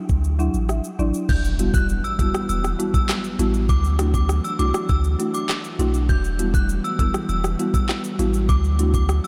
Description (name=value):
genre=dancehall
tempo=100 BPM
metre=4/4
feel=straight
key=E minor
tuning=A4 = 440 Hz
part: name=punchy sub bass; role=bass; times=0.1-9.2 s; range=E1 to D2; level=-24 LUFS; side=equal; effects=none
part: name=afro-pop drum kit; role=drums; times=0.1-9.3 s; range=crash cymbal, handclaps, hi-hat, kick drum, rim click, shaker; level=-25 LUFS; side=equal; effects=none
part: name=folk marimba with medium mallets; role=accompaniment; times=0.4-8.9 s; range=F#3 to F#5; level=-28 LUFS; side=equal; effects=none
part: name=synth chime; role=melody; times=1.3-9.3 s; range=D6 to G6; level=-32 LUFS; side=equal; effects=ensemble chorus, tape echo
part: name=ethereal airy pad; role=sustained chords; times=1.9-9.3 s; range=E3 to F#4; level=-34 LUFS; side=equal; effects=ensemble chorus, built-in reverb, sidechain pumping
part: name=impact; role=sound effects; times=1.3-3.7 s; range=none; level=-34 LUFS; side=equal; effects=none
room=moderate huge ambient reverb, RT60 7.1 s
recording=dreamy mix soaked in reverb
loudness=-21 LUFS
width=mono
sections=0.0-1.3 A section; 1.3-9.3 B section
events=marimba fill 0.1-1.3; impact 1.3-3.7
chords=0.0 Dadd9; 1.3 Emadd9; 3.7 Dadd9; 6.1 Emadd9; 8.5 Dadd9